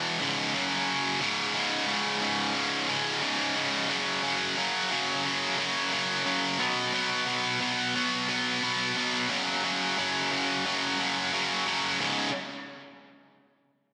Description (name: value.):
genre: rock.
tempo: 89 BPM.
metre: 4/4.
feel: straight.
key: unclear.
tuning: A4 = 441 Hz.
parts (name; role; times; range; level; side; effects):
heavy high-gain guitar; solo; 0.0-12.3 s; C#2 to B3; -28 LUFS; equal; distortion.
room: wet lush hall reverb, RT60 2.2 s.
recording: bright 1980s-style digital production.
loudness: -27 LUFS.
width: mono.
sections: 0.0-1.2 A section; 1.2-12.0 B section; 12.0-13.9 C section.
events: none.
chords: 0.2 C#5; 0.5 F#5; 1.2 C#5; 3.9 F#5; 6.6 B5; 9.3 F#5; 12.0 C#5.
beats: 0.53 | 1.21 1.88 2.55 3.22 | 3.90 4.57 5.25 5.92 | 6.60 7.27 7.95 8.62 | 9.30 9.97 10.65 11.33 | 12.01.